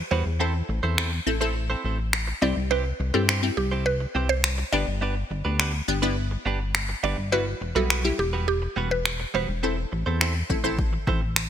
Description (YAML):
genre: dance-pop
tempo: 104 BPM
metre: 4/4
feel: straight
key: unclear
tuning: A4 = 440 Hz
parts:
  - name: mallet-like synth pluck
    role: melody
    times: 0.0-9.9 s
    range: G4 to D5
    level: -28 LUFS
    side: right 2 dB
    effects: chorus, ping-pong delay
  - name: chorused synth bass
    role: bass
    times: 0.0-11.5 s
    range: E1 to G2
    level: -27 LUFS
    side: left 1 dB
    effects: sidechain pumping
  - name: direct-recorded clean electric guitar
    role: riff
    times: 0.1-11.4 s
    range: G3 to C5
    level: -31 LUFS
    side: right 4 dB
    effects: wide subtle chorus
  - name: wavetable chord stab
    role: accompaniment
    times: 0.4-11.3 s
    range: G3 to A4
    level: -29 LUFS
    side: left 3 dB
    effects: phaser, sidechain pumping
  - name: deep house drum kit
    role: drums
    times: 1.0-11.5 s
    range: finger snaps, kick drum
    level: -26 LUFS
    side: left 1 dB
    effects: gated reverb
room: light reverb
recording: bright 1980s-style digital production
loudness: -22 LUFS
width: side -9 dB against mid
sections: 0.0-11.5 A section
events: none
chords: 0.4 Am; 2.4 C; 4.7 G; 7.3 Emadd9; 9.6 Am